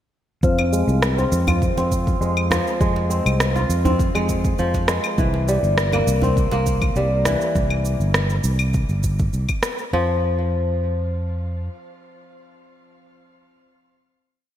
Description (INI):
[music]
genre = organic downtempo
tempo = 101 BPM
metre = 4/4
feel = straight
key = F harmonic minor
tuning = A4 = 439 Hz
[part]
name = kora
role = arpeggios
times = 0.4-12.2 s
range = E3 to F4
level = -23 LUFS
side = left 1 dB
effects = low-pass filter, ping-pong delay, shimmer reverb
[part]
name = sustaining fretless electric bass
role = bass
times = 0.4-11.7 s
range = G1 to F2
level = -21 LUFS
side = equal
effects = none
[part]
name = electronic kick drum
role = drums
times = 0.4-9.6 s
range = none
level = -22 LUFS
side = equal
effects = none
[part]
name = electronic shaker, claves and rim click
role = drums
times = 0.4-9.9 s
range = none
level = -25 LUFS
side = equal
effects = gated reverb
[part]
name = bronze singing bowl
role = texture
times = 0.4-7.6 s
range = C4 to C5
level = -32 LUFS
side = left 3 dB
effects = none
[part]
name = djembe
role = percussion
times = 0.6-7.4 s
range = none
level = -28 LUFS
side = right 2 dB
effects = none
[sound]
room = moderate lush hall reverb, RT60 2.7 s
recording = bright 1980s-style digital production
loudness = -18 LUFS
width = side -11 dB against mid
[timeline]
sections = 0.4-9.9 groove; 9.9-12.3 final note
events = filter sweep on kora 0.4-7.6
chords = 0.4 Fm; 5.2 C7; 9.9 N.C.